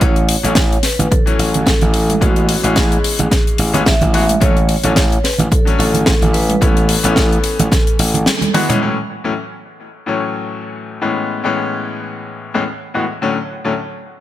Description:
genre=nu-disco, nu disco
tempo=109 BPM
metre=4/4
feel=swing 55% on 16ths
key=A major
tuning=A4 = 440 Hz
part: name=vibraphone with medium mallets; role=melody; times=0.0-8.5 s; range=F#4 to E5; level=-22 LUFS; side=equal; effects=tape echo
part: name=bright grand piano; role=accompaniment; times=0.0-13.7 s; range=A2 to F#4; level=-20 LUFS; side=left 4 dB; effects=sidechain pumping, dub echo
part: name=gritty slap bass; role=bass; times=0.0-8.3 s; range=A1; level=-17 LUFS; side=equal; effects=overdrive, sidechain pumping
part: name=electronic kick drum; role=drums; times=0.0-7.8 s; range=none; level=-16 LUFS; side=equal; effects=none
part: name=tight funk drum kit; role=drums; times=0.0-8.8 s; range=hi-hat, snare drum, toms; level=-18 LUFS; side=left 1 dB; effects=low-pass filter on hats, low-pass filter on toms, low-pass filter on snare, low-pass filter on room
part: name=congas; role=percussion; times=1.0-8.8 s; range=none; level=-22 LUFS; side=right 4 dB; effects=none
room=light reverb, studio ambience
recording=none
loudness=-13 LUFS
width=side -13 dB against mid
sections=0.0-8.8 A section; 8.8-14.2 B section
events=drum fill 8.3-8.8; band accent 8.3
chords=0.0 A6; 2.2 C#m7/A; 4.4 A6; 6.3 A; 8.8 A6; 11.0 C#m7/A; 13.2 Aadd11

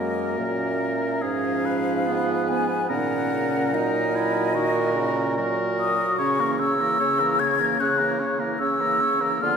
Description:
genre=classical, slow romantic movement for wind quintet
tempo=73 BPM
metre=4/4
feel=rubato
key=unclear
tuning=A4 = 439 Hz
part: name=mellow hollow concert flute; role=melody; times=0.0-9.6 s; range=D#5 to G#6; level=-25 LUFS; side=left 3 dB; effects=none
part: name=warm oboe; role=second line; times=0.0-9.6 s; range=F4 to C#5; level=-30 LUFS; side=left 1 dB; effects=none
part: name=bright clarinet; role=accompaniment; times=0.0-9.6 s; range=A#3 to F#4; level=-28 LUFS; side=right 3 dB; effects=none
part: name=mellow French horn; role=accompaniment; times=0.0-9.6 s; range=C#3 to G#3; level=-31 LUFS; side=equal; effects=none
part: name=mellow bassoon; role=bass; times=0.0-9.6 s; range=F#2 to D3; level=-27 LUFS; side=right 2 dB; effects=none
room=wet church reverb, RT60 3.2 s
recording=recorded in a church or concert hall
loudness=-21 LUFS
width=side -6 dB against mid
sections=0.0-9.6 A section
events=none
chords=0.0 F#; 1.2 Fdim/Ab; 2.9 F#/A#; 6.2 A#dim/C#

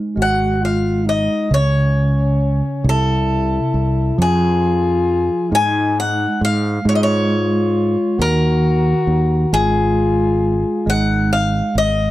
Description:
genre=acoustic folk-pop ballad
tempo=45 BPM (dotted quarters)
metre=6/8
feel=straight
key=unclear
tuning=A4 = 442 Hz
part: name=tine electric piano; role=accompaniment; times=0.0-12.1 s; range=C3 to Eb4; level=-21 LUFS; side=right 2 dB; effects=medium tremolo
part: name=picked swing-style acoustic guitar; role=melody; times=0.2-12.1 s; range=Ab4 to Ab5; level=-20 LUFS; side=left 2 dB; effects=none
part: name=mellow French horn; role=second line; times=0.2-11.8 s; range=Db4 to Gb4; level=-21 LUFS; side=left 3 dB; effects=none
part: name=fretless electric bass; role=bass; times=0.2-12.1 s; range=Ab1 to Ab2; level=-19 LUFS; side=equal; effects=none
room=small room reverb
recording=dry, close 1970s-style studio recording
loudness=-14 LUFS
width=side -15 dB against mid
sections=0.0-1.5 A section; 1.5-12.1 B section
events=French horn solo 0.0-1.5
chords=0.2 Fm7/Ab; 1.5 N.C.; 2.8 C; 4.2 Fm; 5.5 Ab5; 8.2 Ebm; 9.5 Ab5

